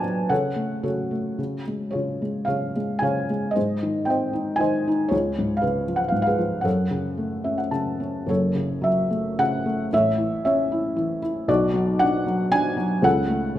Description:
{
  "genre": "classical, lyrical solo piano",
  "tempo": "107-120 BPM",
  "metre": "3/4",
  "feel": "rubato",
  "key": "F# minor",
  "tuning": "A4 = 440 Hz",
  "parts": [
    { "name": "felt-muted upright piano", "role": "solo", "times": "0.0-13.6 s", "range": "F#1 to A5", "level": "-21 LUFS", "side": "equal", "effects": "none" }
  ],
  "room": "moderate recital hall reverb, RT60 1.6 s",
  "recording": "minimal, uncompressed stereo recording",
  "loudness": "-21 LUFS",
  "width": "side -12 dB against mid",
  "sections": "0.0-8.3 A section; 8.3-13.6 A section",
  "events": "felt piano fill 7.2-8.3",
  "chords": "0.3 F#m/C#; 1.4 C#; 3.6 G#; 5.1 C#7; 6.7 F#m; 9.9 A; 11.5 Bm; 13.0 F#m/C#",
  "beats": "| 0.31 0.84 1.39 | 1.93 2.48 3.02 | 3.56 4.09 4.61 | 5.12 5.63 6.14 | 6.66 7.19 7.74 | 8.29 8.84 9.39 | 9.93 10.45 10.97 | 11.49 12.01 12.53 | 13.04 13.56"
}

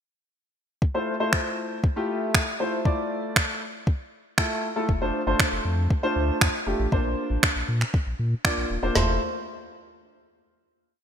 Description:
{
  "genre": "dance-pop",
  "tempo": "118 BPM",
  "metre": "4/4",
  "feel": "straight",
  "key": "F major",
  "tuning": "A4 = 440 Hz",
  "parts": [
    { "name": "smooth R&B drum kit", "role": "drums", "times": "0.8-9.1 s", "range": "finger snaps, kick drum, snare drum, toms", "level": "-23 LUFS", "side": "equal", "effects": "gated reverb" },
    { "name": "warm baby grand piano", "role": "accompaniment", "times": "0.9-9.2 s", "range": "A3 to D5", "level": "-27 LUFS", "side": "equal", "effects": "analog chorus" },
    { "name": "warm sub bass", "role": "bass", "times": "4.9-9.2 s", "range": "Eb1 to Bb2", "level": "-26 LUFS", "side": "equal", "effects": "sidechain pumping" }
  ],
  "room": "light reverb, digital ambience",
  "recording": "bright 1980s-style digital production",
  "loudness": "-22 LUFS",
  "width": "side -8 dB against mid",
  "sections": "0.8-9.0 verse; 9.0-11.0 final chord",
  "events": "none",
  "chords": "0.8 Fmaj7; 4.9 Dm7/F; 6.9 Bbadd9; 9.0 Fmaj7",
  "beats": "| 0.82 1.33 1.84 2.35 | 2.85 3.36 3.87 4.38 | 4.89 5.40 5.91 6.41 | 6.92 7.43 7.94 8.45 | 8.96"
}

